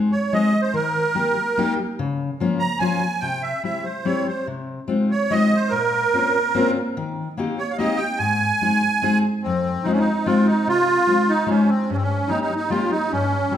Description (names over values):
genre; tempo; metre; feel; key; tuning
musette waltz; 146 BPM; 3/4; rubato; Ab major, F minor from 9.4 s; A4 = 445 Hz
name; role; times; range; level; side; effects
fingerpicked steel-string acoustic guitar; accompaniment; 0.0-13.6 s; F2 to Ab4; -21 LUFS; left 2 dB; none
musette accordion; melody; 0.1-13.6 s; C4 to Bb5; -21 LUFS; right 2 dB; none
room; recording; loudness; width
wet recital hall reverb, RT60 1.4 s; recorded in a church or concert hall; -18 LUFS; side -10 dB against mid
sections
0.0-9.4 A section; 9.4-13.6 B section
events
none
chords
0.0 Ab; 0.7 Eb; 2.0 Bbm/Db; 3.2 C; 4.5 Fm7/C; 5.7 Bbmadd9; 7.0 Eb6; 8.2 Ab; 9.4 Fm7; 11.9 Gdim